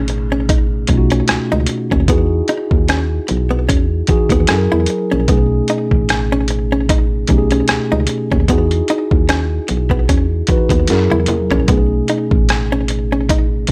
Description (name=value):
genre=R&B, neo-soul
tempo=75 BPM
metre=4/4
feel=swing 55% on 16ths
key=E major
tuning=A4 = 440 Hz
part: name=archtop guitar, miked and amplified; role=second line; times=0.0-13.5 s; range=B3 to E4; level=-22 LUFS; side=equal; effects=slapback echo
part: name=mellow tine electric piano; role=accompaniment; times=0.0-13.7 s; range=B2 to B4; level=-21 LUFS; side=equal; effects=none
part: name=solid FM bass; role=bass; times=0.0-13.7 s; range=A1 to F#2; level=-20 LUFS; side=equal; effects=none
part: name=boom bap sampler-style drum kit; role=drums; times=0.1-13.7 s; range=hi-hat, kick drum, rim click, snare drum, toms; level=-18 LUFS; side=equal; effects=none
room=little or no reverb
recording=none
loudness=-15 LUFS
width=mono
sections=0.0-13.7 A section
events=drum fill 10.9-11.7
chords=0.0 B13; 2.1 Emaj9; 4.5 F#9; 5.3 B13; 8.5 Emaj9; 10.9 F#9; 11.7 B13